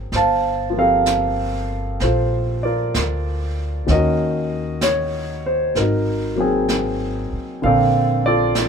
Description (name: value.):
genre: jazz ballad.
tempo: 64 BPM.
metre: 4/4.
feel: swing 66% on 8ths.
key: unclear.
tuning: A4 = 439 Hz.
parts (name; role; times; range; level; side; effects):
warm concert grand piano; accompaniment; 0.0-8.7 s; D3 to A5; -19 LUFS; equal; none.
upright bass; bass; 0.0-8.7 s; G1 to Eb2; -24 LUFS; right 1 dB; none.
jazz brush drum kit; drums; 0.1-8.7 s; brushed snare drum, hi-hat, snare drum; -27 LUFS; right 2 dB; none.
room: moderate small room reverb, RT60 0.5 s.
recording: band playing live in one room.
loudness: -17 LUFS.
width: side -6 dB against mid.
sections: 0.0-8.7 A section.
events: none.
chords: 0.1 Gm11; 3.9 Ebm7; 5.8 Ab9; 7.6 Bbmaj9.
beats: | 0.12 1.06 2.01 2.95 | 3.89 4.82 5.76 6.69 | 7.63 8.56.